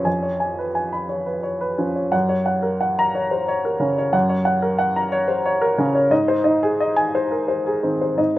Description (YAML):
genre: neoclassical minimalist piano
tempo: 89 BPM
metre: 3/4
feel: uneven beats, rubato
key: unclear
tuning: A4 = 443 Hz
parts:
  - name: warm upright piano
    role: solo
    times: 0.0-8.4 s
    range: F2 to Cb6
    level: -18 LUFS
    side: equal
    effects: none
room: light reverb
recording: recorded outdoors, with no room sound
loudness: -18 LUFS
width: side -15 dB against mid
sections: 0.0-8.4 A section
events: none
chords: 0.0 Db7/F; 2.1 Gb; 6.1 Ab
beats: | 0.06 0.75 1.44 | 2.13 2.81 3.48 | 4.13 4.78 5.44 | 6.11 6.79 7.47 | 8.18